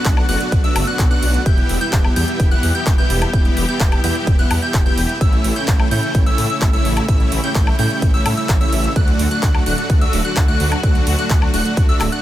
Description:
EDM, festival progressive house; 128 BPM; 4/4; straight; A4 = 441 Hz
bright symphonic string section; sustained chords; 0.0-12.2 s; C#3 to G4; -27 LUFS; left 2 dB; sidechain pumping
plucky unison lead; arpeggios; 0.0-12.2 s; E6 to G6; -24 LUFS; equal; lush chorus, sidechain pumping, dub echo
dense compressed supersaw; riff; 0.0-12.2 s; A3 to G5; -22 LUFS; right 1 dB; sidechain pumping, dub echo
wide detuned saw bass; bass; 0.1-12.1 s; D1 to A2; -22 LUFS; equal; chorus, sidechain pumping
big-room dance drum kit; drums; 0.1-12.2 s; handclaps, hi-hat, woodblock; -25 LUFS; left 1 dB
electronic kick drum; drums; 0.1-11.9 s; -15 LUFS; equal
digital ambience; -14 LUFS; side -13 dB against mid
0.0-12.2 A section
0.0 Bm; 1.5 Em; 5.2 A; 9.0 D
0.05 0.52 0.99 | 1.46 1.93 2.40 2.87 | 3.33 3.80 4.27 4.74 | 5.21 5.68 6.15 6.62 | 7.08 7.55 8.02 8.49 | 8.96 9.43 9.90 10.37 | 10.83 11.30 11.77

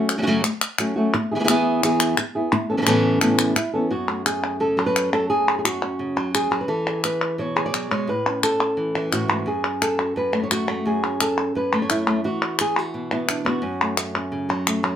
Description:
flamenco; 173 BPM; 4/4; straight; F# minor; A4 = 441 Hz
flamenco guitar; melody; 0.0-15.0 s; F#2 to D5; -21 LUFS; equal
palmas hand claps; percussion; 0.1-15.0 s; -23 LUFS; left 2 dB
moderate studio ambience, RT60 0.5 s; band playing live in one room; -19 LUFS; side -9 dB against mid
0.0-3.9 A section; 3.9-15.0 B section
0.0 F#m; 1.1 E; 2.5 Aadd9; 3.9 F#m; 6.7 E; 8.1 Aadd9; 9.5 F#m; 12.2 E5; 13.6 F#m
0.09 0.44 0.79 | 1.13 1.48 1.82 2.17 | 2.52 2.87 3.21 3.56 | 3.91 4.26 4.61 4.95 | 5.30 5.65 6.00 6.35 | 6.69 7.04 7.39 7.74 | 8.08 8.43 8.78 9.12 | 9.47 9.82 10.16 10.51 | 10.86 11.21 11.55 11.90 | 12.25 12.59 12.94 13.29 | 13.63 13.98 14.33 14.67

